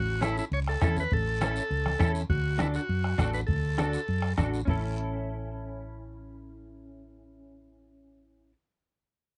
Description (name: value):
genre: latin, cumbia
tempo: 202 BPM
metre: 4/4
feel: straight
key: A major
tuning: A4 = 439 Hz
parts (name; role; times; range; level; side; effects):
- combo organ; melody; 0.0-4.3 s; E4 to C#5; -35 LUFS; equal; none
- hollow-body short-scale fingered electric bass; bass; 0.0-8.5 s; A1 to F#2; -33 LUFS; equal; none
- semi-hollow electric guitar; accompaniment; 0.2-8.5 s; C#4 to A4; -37 LUFS; equal; ensemble chorus
- bombo; percussion; 0.2-4.7 s; none; -33 LUFS; equal; none
- congas; percussion; 0.2-4.7 s; none; -37 LUFS; equal; none
- guiro; percussion; 0.2-4.7 s; none; -50 LUFS; equal; none
room: light reverb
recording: dark, warm production, nothing above 10.7 kHz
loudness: -29 LUFS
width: mono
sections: 0.0-4.7 A section; 4.7-7.1 B section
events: none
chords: 0.0 A; 2.3 D; 4.7 A